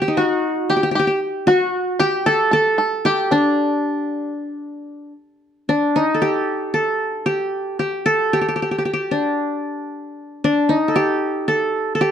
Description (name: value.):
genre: turkish.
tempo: 228 BPM (eighths).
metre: 9/8.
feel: straight.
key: unclear.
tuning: A4 = 438 Hz.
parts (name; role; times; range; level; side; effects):
qanun; melody; 0.0-12.1 s; D4 to A4; -18 LUFS; equal; none.
bluegrass banjo; second line; 0.0-5.1 s; D4 to A4; -22 LUFS; left 1 dB; none.
room: light reverb.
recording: dark, warm production.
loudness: -17 LUFS.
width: side -9 dB against mid.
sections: 0.0-5.7 A section; 5.7-12.1 B section.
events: none.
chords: none.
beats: 0.16 0.42 0.69 | 0.95 1.21 1.47 1.74 2.00 2.26 2.53 2.79 3.05 | 3.32 3.58 3.84 4.11 4.37 4.63 4.90 5.16 5.42 | 5.69 5.95 6.21 6.48 6.74 7.01 7.27 7.53 7.80 | 8.06 8.32 8.59 8.85 9.12 9.38 9.64 9.91 10.17 | 10.43 10.70 10.96 11.22 11.49 11.75 12.02.